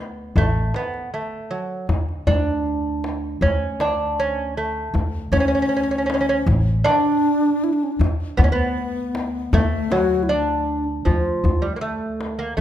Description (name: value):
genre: Persian modal ensemble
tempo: 78 BPM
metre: 4/4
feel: straight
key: D dastgah mahur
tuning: A4 = 440 Hz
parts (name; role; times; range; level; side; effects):
- lute; melody; 0.0-12.6 s; F3 to D4; -22 LUFS; right 3 dB; none
- upright bass; bass; 0.0-12.6 s; A1 to D3; -24 LUFS; equal; none
- tombak; percussion; 0.4-12.4 s; none; -23 LUFS; left 1 dB; none
- breathy mellow wooden-headed alto flute; second line; 5.3-10.9 s; A3 to F#4; -23 LUFS; left 6 dB; none
room: moderate recital hall reverb, RT60 1.4 s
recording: minimal, uncompressed stereo recording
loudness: -19 LUFS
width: side -11 dB against mid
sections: 0.0-11.1 A section; 11.1-12.6 B section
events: none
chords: none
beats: 0.36 1.12 | 1.89 2.65 3.42 4.18 | 4.95 5.71 6.48 7.24 | 8.01 8.77 9.53 10.30 | 11.06 11.82 12.59